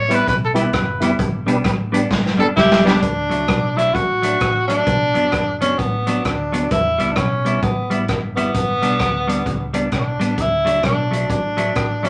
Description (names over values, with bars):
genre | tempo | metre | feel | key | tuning
ska | 131 BPM | 4/4 | swing 62% on 8ths | unclear | A4 = 440 Hz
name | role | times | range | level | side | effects
clear trumpet | melody | 0.0-3.0 s | G4 to C#5 | -22 LUFS | equal | none
fingered electric bass | bass | 0.0-12.1 s | F#1 to E2 | -29 LUFS | equal | none
semi-hollow electric guitar | accompaniment | 0.1-12.1 s | F#3 to E4 | -25 LUFS | equal | spring reverb
tonewheel organ | stabs | 0.1-2.9 s | B3 to B4 | -26 LUFS | equal | chorus vibrato, slow rotary speaker
swinging big-band drum kit | drums | 0.1-12.1 s | hi-hat, kick drum, rim click, snare drum | -24 LUFS | equal | none
warm tenor saxophone | melody | 2.6-12.1 s | B3 to F#4 | -22 LUFS | equal | none
room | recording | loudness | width
moderate club reverb, RT60 0.6 s | none | -18 LUFS | mono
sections
0.0-3.0 A section; 3.0-12.1 B section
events
trumpet solo 0.0-3.0; drum fill 2.1-3.0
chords
0.0 Em; 1.2 G; 3.0 D; 4.9 Bm; 6.7 Em; 8.5 G; 10.4 D